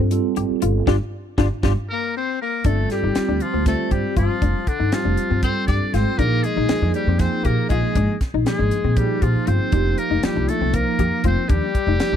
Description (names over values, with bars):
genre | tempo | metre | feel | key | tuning
electric jazz fusion | 237 BPM (eighths) | 7/8 | straight | G phrygian | A4 = 440 Hz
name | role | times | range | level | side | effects
bright tine electric piano | accompaniment | 0.0-12.2 s | F3 to C5 | -24 LUFS | right 7 dB | medium stereo tremolo, phaser
semi-hollow electric guitar | stabs | 0.0-12.2 s | C4 to G4 | -27 LUFS | left 15 dB | ensemble chorus
upright bass | bass | 0.0-12.2 s | F1 to Bb2 | -21 LUFS | equal | none
tight funk drum kit | drums | 0.1-12.1 s | hi-hat, kick drum, snare drum | -22 LUFS | equal | none
trumpet with metal mute | melody | 1.9-12.2 s | D4 to D5 | -27 LUFS | right 1 dB | none
warm tenor saxophone | second line | 1.9-12.2 s | D3 to D4 | -26 LUFS | left 15 dB | none
room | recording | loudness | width
small room ambience | dry, close 1970s-style studio recording | -18 LUFS | side -9 dB against mid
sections
0.0-2.6 A section; 2.6-12.2 B section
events
band accent 0.9-2.6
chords
0.0 Gm11; 2.6 G9sus4; 6.2 Bb9sus4; 9.7 F9sus4